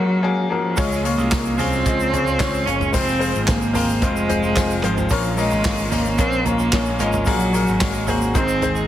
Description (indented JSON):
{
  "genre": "piano-driven pop",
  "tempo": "111 BPM",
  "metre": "4/4",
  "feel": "straight",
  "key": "Db major",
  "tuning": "A4 = 442 Hz",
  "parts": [
    { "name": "warm cello", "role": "melody", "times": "0.0-8.9 s", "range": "F3 to Db4", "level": "-21 LUFS", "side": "right 1 dB", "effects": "none" },
    { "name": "bright upright piano", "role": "accompaniment", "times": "0.0-8.9 s", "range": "Ab2 to Eb5", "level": "-23 LUFS", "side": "left 5 dB", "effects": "none" },
    { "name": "direct-recorded clean electric guitar", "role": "riff", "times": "0.8-8.9 s", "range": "F2 to Ab4", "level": "-29 LUFS", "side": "right 6 dB", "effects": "none" },
    { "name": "modern bright picked electric bass", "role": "bass", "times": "0.8-8.9 s", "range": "F1 to Db2", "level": "-25 LUFS", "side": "right 1 dB", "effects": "none" },
    { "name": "natural country drum kit", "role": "drums", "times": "0.8-8.7 s", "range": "handclaps, hi-hat, kick drum, snare drum, toms", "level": "-24 LUFS", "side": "right 1 dB", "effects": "none" },
    { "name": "egg shaker", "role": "percussion", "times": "0.8-8.9 s", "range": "none", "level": "-37 LUFS", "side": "right 10 dB", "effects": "none" }
  ],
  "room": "light reverb, studio reverb",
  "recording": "heavily compressed radio sound",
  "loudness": "-17 LUFS",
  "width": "side -12 dB against mid",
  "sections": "0.0-8.9 A section",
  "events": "none",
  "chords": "0.0 Gbadd9/Bb; 0.8 Db; 2.9 Fm; 5.1 Bbm; 7.3 Gbadd9; 8.3 Ab"
}